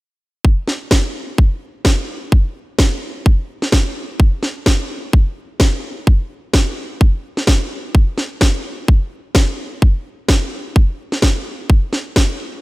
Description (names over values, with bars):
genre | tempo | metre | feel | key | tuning
house | 128 BPM | 4/4 | swing 57% on 16ths | none | none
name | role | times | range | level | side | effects
electronic kick drum | drums | 0.4-12.3 s | none | -12 LUFS | equal | none
electronic snare drum | drums | 0.7-12.3 s | none | -19 LUFS | equal | none
room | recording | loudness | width
little or no reverb | none | -15 LUFS | side -21 dB against mid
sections
0.4-12.6 A section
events
none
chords
none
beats
| 0.45 0.92 1.38 1.85 | 2.32 2.79 3.26 3.73 | 4.20 4.67 5.13 5.60 | 6.07 6.54 7.01 7.48 | 7.95 8.41 8.88 9.35 | 9.82 10.29 10.76 11.23 | 11.70 12.16